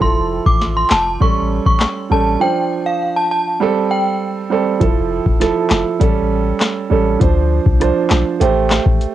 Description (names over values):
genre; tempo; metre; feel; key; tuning
dancehall; 100 BPM; 4/4; straight; A minor; A4 = 440 Hz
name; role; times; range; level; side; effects
synth chime; melody; 0.0-4.0 s; F5 to D6; -18 LUFS; equal; ensemble chorus, cassette tape, tape echo
warm grand piano; accompaniment; 0.0-9.1 s; F3 to C5; -17 LUFS; right 6 dB; sidechain pumping, cassette tape
punchy sub bass; bass; 0.0-9.0 s; E1 to D2; -18 LUFS; left 1 dB; none
booming analog drum machine; drums; 0.0-9.1 s; handclaps, hi-hat, kick drum, rim click, snare drum; -16 LUFS; left 1 dB; vintage 12-bit sampler grit, cassette tape
room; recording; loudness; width
light reverb; home recording on cassette; -13 LUFS; side -12 dB against mid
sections
0.0-4.8 A section; 4.8-9.1 B section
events
none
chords
0.0 Fmaj7; 1.2 A7; 2.4 Dm7; 3.6 Am7; 4.8 Fmaj7; 6.0 A7; 7.2 Dm7; 8.4 Am7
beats
| 0.01 0.61 1.21 1.81 | 2.41 3.01 3.61 4.21 | 4.81 5.41 6.01 6.61 | 7.21 7.81 8.41 9.01